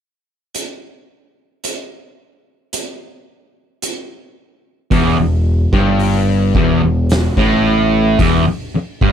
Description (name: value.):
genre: stoner and doom metal.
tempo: 55 BPM.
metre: 4/4.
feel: straight.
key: E minor.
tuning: A4 = 437 Hz.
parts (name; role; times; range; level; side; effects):
oversized low-tuned drum kit; drums; 0.5-9.1 s; hi-hat, kick drum, snare drum; -20 LUFS; equal; none.
fuzz guitar; riff; 4.9-9.1 s; E2 to A2; -14 LUFS; equal; distortion.
growling picked electric bass; bass; 4.9-9.1 s; E1 to A1; -18 LUFS; equal; overdrive, tube saturation.
room: little or no reverb.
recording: none.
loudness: -13 LUFS.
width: side -8 dB against mid.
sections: 0.5-4.9 A section; 4.9-9.1 B section.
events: none.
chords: 0.5 N.C.; 4.9 Em.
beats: | 0.55 1.64 2.73 3.83 | 4.92 6.01 7.11 8.20.